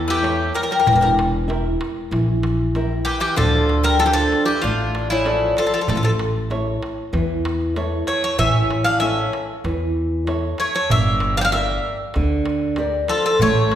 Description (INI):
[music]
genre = greek folk, Greek bouzouki band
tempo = 96 BPM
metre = 4/4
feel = straight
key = unclear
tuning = A4 = 440 Hz
[part]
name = Greek bouzouki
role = melody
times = 0.0-13.8 s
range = E4 to G5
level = -20 LUFS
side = equal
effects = none
[part]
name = Greek bouzouki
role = second line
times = 0.0-13.8 s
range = C#3 to E4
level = -24 LUFS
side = left 4 dB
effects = none
[part]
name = flamenco guitar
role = accompaniment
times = 0.0-13.8 s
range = D3 to D5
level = -24 LUFS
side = right 1 dB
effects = none
[part]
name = upright bass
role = bass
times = 0.0-13.8 s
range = E1 to E2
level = -23 LUFS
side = equal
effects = none
[part]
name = darbuka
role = percussion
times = 0.2-13.8 s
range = none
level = -27 LUFS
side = right 2 dB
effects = none
[sound]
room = wet recital hall reverb, RT60 1.5 s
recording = recorded in a church or concert hall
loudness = -17 LUFS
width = side -10 dB against mid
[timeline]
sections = 0.0-13.8 A section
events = none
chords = 0.0 A; 0.9 Edim; 3.4 Dm; 5.9 A; 10.9 Gm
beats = 0.24 | 0.87 1.49 2.12 2.75 | 3.37 4.00 4.62 5.25 | 5.88 6.51 7.13 7.76 | 8.39 9.01 9.64 10.27 | 10.89 11.52 12.15 12.77 | 13.40